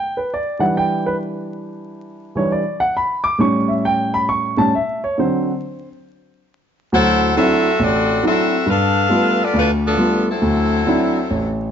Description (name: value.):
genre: jazz.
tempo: 136 BPM.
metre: 4/4.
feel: swing 66% on 8ths.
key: D major.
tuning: A4 = 440 Hz.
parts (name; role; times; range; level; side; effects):
warm grand piano; accompaniment; 0.0-11.7 s; A1 to D6; -17 LUFS; equal; none.
clear saxophone section; melody; 6.9-11.6 s; F3 to F#5; -17 LUFS; left 2 dB; none.
room: moderate echo chamber reverb, RT60 1.4 s.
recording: vinyl crackle, nothing above 7.6 kHz.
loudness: -15 LUFS.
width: side -8 dB against mid.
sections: 0.0-6.9 A section; 6.9-11.7 B section.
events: grand piano solo 0.0-6.9.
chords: 0.0 Em7; 3.4 A7; 5.1 D7; 6.9 D9; 8.7 G9; 10.4 D9.